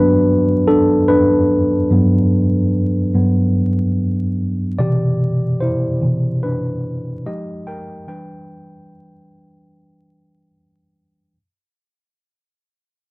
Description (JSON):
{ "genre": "R&B", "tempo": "73 BPM", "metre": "4/4", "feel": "swing 59% on 16ths", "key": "unclear", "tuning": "A4 = 439 Hz", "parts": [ { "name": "tine electric piano", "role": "solo", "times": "0.0-11.4 s", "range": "G2 to G5", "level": "-14 LUFS", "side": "equal", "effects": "none" } ], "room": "moderate booth ambience, RT60 0.2 s", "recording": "dry, close 1970s-style studio recording, vinyl crackle", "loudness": "-14 LUFS", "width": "side -24 dB against mid", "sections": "0.0-11.3 A section", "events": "fade-out 0.0-11.3; tine electric piano solo 0.0-11.3", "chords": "0.0 Gmaj7; 4.8 Cmaj9; 7.2 Fm9; 8.1 Em7", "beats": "0.66 | 1.49 2.31 3.13 3.95 | 4.77 5.60 6.42 7.24 | 8.06 8.88 9.71 10.53" }